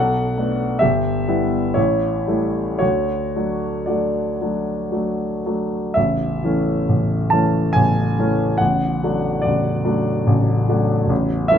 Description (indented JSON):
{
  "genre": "classical, romantic nocturne for solo piano",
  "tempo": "54-73 BPM",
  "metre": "3/4",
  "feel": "rubato",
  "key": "D major, A major from 6.0 s",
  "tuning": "A4 = 441 Hz",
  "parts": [
    { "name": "warm grand piano", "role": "solo", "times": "0.0-11.6 s", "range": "A0 to A5", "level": "-17 LUFS", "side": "equal", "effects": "none" }
  ],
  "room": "light reverb",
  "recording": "none",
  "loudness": "-17 LUFS",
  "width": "side -8 dB against mid",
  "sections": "0.0-6.0 A section; 6.0-11.6 B section",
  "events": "none",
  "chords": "0.0 Bm7; 0.8 Em/G; 1.8 A7; 2.8 D; 6.0 A; 8.6 D/A",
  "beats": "0.82 1.76 | 2.81 3.89 4.92 | 5.96 6.88 7.75 | 8.60 9.43 10.27 | 11.10"
}